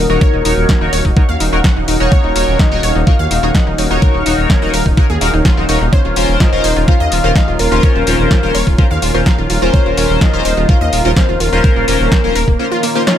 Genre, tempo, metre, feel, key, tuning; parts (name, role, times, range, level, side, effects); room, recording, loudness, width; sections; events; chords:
progressive house; 126 BPM; 4/4; straight; Eb dorian; A4 = 439 Hz
soft octave-layered synth lead; melody; 0.0-13.2 s; Bb4 to F5; -20 LUFS; left 2 dB; chorus, tape echo
lush unison pad; sustained chords; 0.0-13.2 s; Eb3 to F5; -21 LUFS; equal; chorus, sidechain pumping
wide unison pluck; arpeggios; 0.0-13.1 s; Bb3 to Gb5; -21 LUFS; right 1 dB; sidechain pumping, tape echo
dark detuned saw bass; bass; 0.0-12.6 s; Eb1 to Eb2; -17 LUFS; equal; sidechain pumping
impact and swell; sound effects; 0.0-0.2, 12.9-13.2 s; -33 LUFS; right 1 dB
chorused polysynth; stabs; 0.1-13.0 s; Db4 to F5; -18 LUFS; left 2 dB; phaser, sidechain pumping, tape echo
electronic kick drum; drums; 0.2-12.6 s; -11 LUFS; equal; overdrive
deep house drum kit; drums; 0.5-13.2 s; hi-hat, snare drum; -20 LUFS; equal; overdrive
little or no reverb; -10 LUFS; side -10 dB against mid
0.0-13.2 A section
impact 0.0
0.0 Ebm7